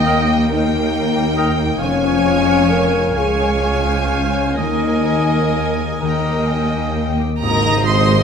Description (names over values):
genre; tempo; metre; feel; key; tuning
classical, slow romantic movement for symphony orchestra; 40-47 BPM (dotted quarters); 6/8; rubato; unclear; A4 = 441 Hz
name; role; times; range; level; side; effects
warm chamber violin section; melody; 0.0-8.2 s; G5 to C6; -25 LUFS; left 1 dB; none
flute section; second line; 0.0-8.2 s; G5 to Eb6; -26 LUFS; left 5 dB; none
rich chamber violin section; second line; 0.0-8.2 s; Bb4 to Ab5; -26 LUFS; left 2 dB; none
warm oboe; second line; 0.0-8.2 s; Eb5 to F5; -26 LUFS; right 2 dB; none
rich studio viola section; accompaniment; 0.0-8.2 s; Bb4 to Eb5; -25 LUFS; right 4 dB; none
dark French horn section; sustained chords; 0.0-8.2 s; Bb3 to Bb4; -20 LUFS; left 6 dB; none
concert harp; arpeggios; 0.0-8.2 s; Ab2 to Db5; -25 LUFS; left 8 dB; none
clear studio cello section; bass; 0.0-8.2 s; Db2 to Ab2; -22 LUFS; right 3 dB; none
rich chamber double bass section; bass; 0.0-8.2 s; F1 to Eb2; -22 LUFS; right 4 dB; none
clear clarinet; second line; 0.1-8.2 s; Bb4 to Db5; -29 LUFS; right 1 dB; none
clear trombone section; sustained chords; 7.4-8.2 s; Eb3 to Ab3; -25 LUFS; right 3 dB; none
warm tuba; bass; 7.4-8.2 s; Ab1; -22 LUFS; right 5 dB; none
tam-tam; percussion; 7.4-8.2 s; none; -27 LUFS; right 1 dB; none
room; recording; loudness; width
wet recital hall reverb, RT60 1.5 s; none; -14 LUFS; side -6 dB against mid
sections
0.0-7.4 A section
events
band accent 7.4-8.2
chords
0.0 Eb; 1.8 Db/F; 4.6 Ebsus4; 6.0 Eb; 7.4 Ab